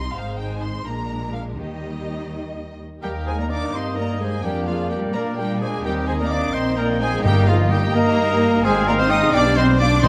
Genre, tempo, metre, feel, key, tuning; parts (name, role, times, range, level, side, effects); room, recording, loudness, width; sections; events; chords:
quick classical-period movement for symphony orchestra; 85 BPM (dotted quarters); 6/8; straight; Eb major; A4 = 440 Hz
warm symphonic violin section; melody; 0.0-10.1 s; Eb5 to Eb6; -31 LUFS; equal
rich studio violin section; second line; 0.0-10.1 s; F4 to Eb5; -34 LUFS; equal
warm studio viola section; accompaniment; 0.0-10.1 s; Eb3 to Ab4; -32 LUFS; equal
rich chamber cello section; bass; 0.0-10.1 s; Ab2 to Eb4; -29 LUFS; equal
warm chamber double bass section; bass; 0.0-10.1 s; G1 to Bb2; -27 LUFS; equal
clear cor anglais; second line; 3.0-10.1 s; Bb4 to G5; -32 LUFS; equal
hollow concert flute; second line; 3.0-10.1 s; Ab4 to G5; -32 LUFS; equal
mellow clarinet; second line; 3.0-10.1 s; D5 to Eb5; -36 LUFS; equal
warm bassoon; accompaniment; 3.0-10.1 s; G3 to C4; -32 LUFS; equal
warm French horn section; sustained chords; 3.0-10.1 s; F3 to Eb4; -29 LUFS; equal
mellow trumpet; stabs; 3.0-10.1 s; F4 to Eb5; -29 LUFS; equal
timpani; percussion; 7.3-10.1 s; G2 to C3; -24 LUFS; equal
light reverb; close, detailed microphones; -21 LUFS; mono
0.0-3.0 A section; 3.0-10.1 A section
0.2 Ab6; 0.9 Bb7; 1.6 Eb; 4.4 Bb7/F; 5.9 Eb; 7.3 Eb/G; 8.7 Ab; 9.3 G/B